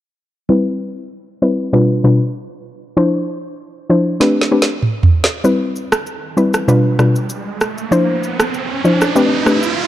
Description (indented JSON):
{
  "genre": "afrobeats",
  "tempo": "97 BPM",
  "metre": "4/4",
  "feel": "swing 55% on 16ths",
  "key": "C major",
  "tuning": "A4 = 440 Hz",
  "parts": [
    { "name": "soft round pluck", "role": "accompaniment", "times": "0.5-9.6 s", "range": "B2 to C5", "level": "-14 LUFS", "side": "left 1 dB", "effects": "chorus, low-pass filter" },
    { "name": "afro-pop drum kit", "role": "drums", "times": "4.2-9.8 s", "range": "rim click, shaker, snare drum, toms", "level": "-17 LUFS", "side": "right 2 dB", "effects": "none" },
    { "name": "riser", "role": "sound effects", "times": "6.3-9.9 s", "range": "none", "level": "-21 LUFS", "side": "right 4 dB", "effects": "none" }
  ],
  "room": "light reverb",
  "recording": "dark, warm production",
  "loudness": "-13 LUFS",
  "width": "side -13 dB against mid",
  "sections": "0.5-9.9 A section",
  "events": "filter sweep on synth pluck 0.5-9.9; drum fill 4.2-5.4; riser 6.3-9.9",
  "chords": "0.5 Cmaj7; 1.7 G7/B; 3.0 Dm9; 4.2 Am11; 5.4 Cmaj7; 6.7 G7/B; 7.9 Dm9; 9.2 Am11"
}